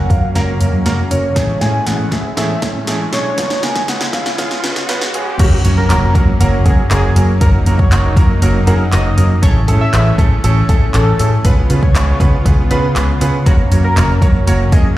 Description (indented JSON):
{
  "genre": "dance-pop",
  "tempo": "119 BPM",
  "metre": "4/4",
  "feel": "straight",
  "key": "F# major",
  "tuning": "A4 = 441 Hz",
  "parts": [
    { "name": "warm velvety synth lead", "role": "melody", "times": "0.0-4.6 s", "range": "C#5 to G#5", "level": "-22 LUFS", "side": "equal", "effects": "chorus, digital delay" },
    { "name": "soft supersaw", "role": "sustained chords", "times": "0.0-15.0 s", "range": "C#3 to E#4", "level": "-24 LUFS", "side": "left 1 dB", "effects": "sidechain pumping" },
    { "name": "vintage muted fingered electric bass", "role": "bass", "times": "0.0-14.9 s", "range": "E#1 to C#3", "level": "-14 LUFS", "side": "equal", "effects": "sidechain pumping" },
    { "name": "riser and impact", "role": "sound effects", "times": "0.5-7.4 s", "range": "none", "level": "-24 LUFS", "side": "equal", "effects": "none" },
    { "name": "clear concert grand piano", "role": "accompaniment", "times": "0.1-14.9 s", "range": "F#3 to D#5", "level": "-20 LUFS", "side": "right 3 dB", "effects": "sidechain pumping" },
    { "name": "deep house drum kit", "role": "drums", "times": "0.1-14.8 s", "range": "crash cymbal, handclaps, hi-hat, kick drum, snare drum", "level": "-15 LUFS", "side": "equal", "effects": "overdrive" },
    { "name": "octave-doubled lead", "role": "melody", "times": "5.4-14.9 s", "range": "F#4 to E5", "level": "-22 LUFS", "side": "equal", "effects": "chorus, sidechain pumping, digital delay" }
  ],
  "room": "little or no reverb",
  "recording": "played on a big sound system in a bare room, large studio reverb, high-pass filter",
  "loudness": "-11 LUFS",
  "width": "side -15 dB against mid",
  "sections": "0.0-5.4 A section; 5.4-15.0 B section",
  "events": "build-up 0.0-5.4; drum fill 0.0-5.4; filter sweep 0.0-5.4; riser 0.5-5.4; drop 5.4-15.0; impact 5.4-7.4",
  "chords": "0.0 F#; 1.4 Amaj7; 3.4 C#7; 5.4 F#; 9.4 Amaj7; 11.4 C#7; 13.5 F#"
}